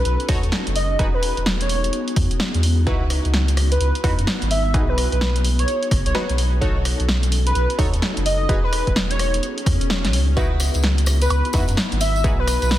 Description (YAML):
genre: UK garage, two-step garage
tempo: 128 BPM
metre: 4/4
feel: swing 62% on 16ths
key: E major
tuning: A4 = 439 Hz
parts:
  - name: airy dreamy lead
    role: melody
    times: 0.0-12.8 s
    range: B4 to E5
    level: -25 LUFS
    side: equal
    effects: chorus, digital delay
  - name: ethereal airy pad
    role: sustained chords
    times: 0.0-12.8 s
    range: B3 to A4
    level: -31 LUFS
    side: left 1 dB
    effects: ensemble chorus, built-in reverb, sidechain pumping
  - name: saturated sub bass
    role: bass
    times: 0.0-12.8 s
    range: E1 to F#2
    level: -20 LUFS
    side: equal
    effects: none
  - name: punchy analog drum machine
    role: drums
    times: 0.1-12.8 s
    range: hi-hat, rim click, snare drum, woodblock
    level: -24 LUFS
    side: equal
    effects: soft clipping on snare
  - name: punchy chord stab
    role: stabs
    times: 0.3-12.3 s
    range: D#4 to C#5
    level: -28 LUFS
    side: equal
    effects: chorus, digital delay
  - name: electronic kick drum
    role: drums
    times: 0.3-12.4 s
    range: none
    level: -22 LUFS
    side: equal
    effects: none
  - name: swell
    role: sound effects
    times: 9.5-10.4 s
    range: none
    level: -31 LUFS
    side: left 3 dB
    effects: none
  - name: tambourine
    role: percussion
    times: 10.4-12.8 s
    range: none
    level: -32 LUFS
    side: left 3 dB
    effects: none
room: light reverb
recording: dense, heavily limited modern master, vinyl crackle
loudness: -17 LUFS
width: side -13 dB against mid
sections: 0.0-12.8 A section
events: swell 9.5-10.4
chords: 0.0 B9 (rootless); 1.0 Emaj9; 2.9 C#m11; 4.7 G#m7/B; 6.4 B9; 8.5 Emaj9; 10.4 C#m11; 12.2 G#m7/B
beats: 0.06 0.52 | 0.99 1.46 1.93 2.40 | 2.87 3.34 3.81 4.27 | 4.74 5.21 5.68 6.15 | 6.62 7.09 7.55 8.02 | 8.49 8.96 9.43 9.90 | 10.37 10.84 11.30 11.77 | 12.24 12.71